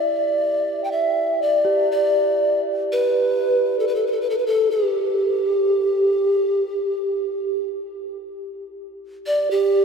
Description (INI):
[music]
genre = world meditative, free-time meditation music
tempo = free time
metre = none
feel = none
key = G major pentatonic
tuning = A4 = 442 Hz
[part]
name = breathy mellow polished pan flute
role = melody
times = 0.0-9.8 s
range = G4 to G5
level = -19 LUFS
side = equal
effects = diffuse ambient delay
[part]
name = quartz singing bowl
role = texture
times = 0.0-9.1 s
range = E4 to G4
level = -29 LUFS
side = right 1 dB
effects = none
[sound]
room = wet cathedral reverb, RT60 6.2 s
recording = in a vast, echoing space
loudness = -18 LUFS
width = side -6 dB against mid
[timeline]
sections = 0.0-9.8 A section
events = none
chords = none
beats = free time